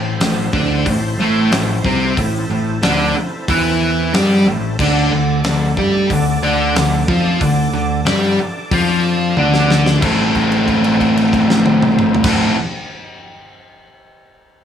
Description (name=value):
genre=blues rock power trio and southern rock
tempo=92 BPM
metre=4/4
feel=straight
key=A minor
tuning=A4 = 439 Hz
part: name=overdriven tonewheel organ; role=sustained chords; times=0.0-12.5 s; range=A3 to D5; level=-26 LUFS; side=right 3 dB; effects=slow rotary speaker, chorus vibrato
part: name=sludgy distorted guitar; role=riff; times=0.0-12.6 s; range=A2 to A4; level=-15 LUFS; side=equal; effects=overdrive
part: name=picked electric bass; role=bass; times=0.0-12.5 s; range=A1 to G2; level=-20 LUFS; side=equal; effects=none
part: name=big rock drum kit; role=drums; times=0.2-12.4 s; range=crash cymbal, hi-hat, kick drum, snare drum, toms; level=-21 LUFS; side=left 1 dB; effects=none
room=little or no reverb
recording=small room ambience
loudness=-13 LUFS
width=side -8 dB against mid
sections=0.0-10.0 A section; 10.0-12.6 B section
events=drum fill 9.4-10.0; held note 10.0-12.2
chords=0.0 Am; 4.8 D5; 10.0 Am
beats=0.20 0.86 1.52 | 2.17 2.83 3.48 4.14 | 4.79 5.45 6.10 6.75 | 7.41 8.06 8.72 9.37 | 10.02 10.68 11.33 11.98